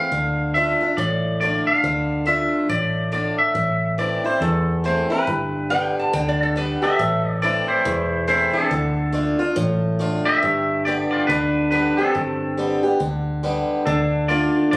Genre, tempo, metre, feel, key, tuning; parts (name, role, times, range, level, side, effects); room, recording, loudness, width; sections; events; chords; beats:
honky-tonk and classic country; 140 BPM; 4/4; swing 61% on 8ths; A4 = 445 Hz
twangy electric guitar; melody; 0.0-14.8 s; C4 to F5; -21 LUFS; equal; tape echo
picked swing-style acoustic guitar; accompaniment; 0.0-14.8 s; E2 to G4; -22 LUFS; equal
vintage muted fingered electric bass; bass; 0.1-14.8 s; E1 to E2; -25 LUFS; equal
lap resonator guitar; second line; 5.7-6.9 s; A4 to A5; -25 LUFS; equal
light reverb; recorded on a phone in the room, club reverb, compression; -18 LUFS; side -22 dB against mid
0.0-7.0 A section; 7.0-14.8 A section
0.1 Dm; 3.6 Am; 5.3 G; 7.0 Am; 8.7 Dm; 10.4 G; 13.9 Dm
| 0.11 0.54 0.97 1.40 | 1.83 2.26 2.69 3.12 | 3.55 3.98 4.41 4.84 | 5.27 5.70 6.13 6.56 | 6.99 7.42 7.85 8.28 | 8.71 9.14 9.57 10.00 | 10.43 10.86 11.29 11.72 | 12.14 12.57 13.00 13.43 | 13.86 14.29 14.72